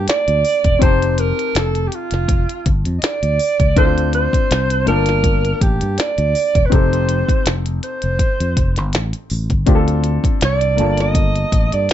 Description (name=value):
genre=lush 1970s-style soul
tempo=81 BPM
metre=4/4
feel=swing 54% on 16ths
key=G minor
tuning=A4 = 440 Hz
part: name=mellow alto saxophone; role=melody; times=0.0-11.9 s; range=F4 to Eb5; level=-19 LUFS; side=right 3 dB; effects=slapback echo, plate reverb
part: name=warm baby grand piano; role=accompaniment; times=0.0-11.9 s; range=D3 to A5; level=-23 LUFS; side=left 5 dB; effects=none
part: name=fingered electric bass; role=bass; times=0.0-11.9 s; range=E1 to G2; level=-18 LUFS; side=equal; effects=none
part: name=minimal click drum kit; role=drums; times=0.1-11.9 s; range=hi-hat, kick drum, snare drum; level=-17 LUFS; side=equal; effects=none
room=light reverb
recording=nothing above 7.9 kHz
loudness=-14 LUFS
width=side -11 dB against mid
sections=0.0-11.9 A section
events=none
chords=0.0 Gm9 (rootless); 0.8 F9; 3.8 Dm7; 4.9 Gm9; 6.7 F9; 9.7 Dm7; 10.8 Gm9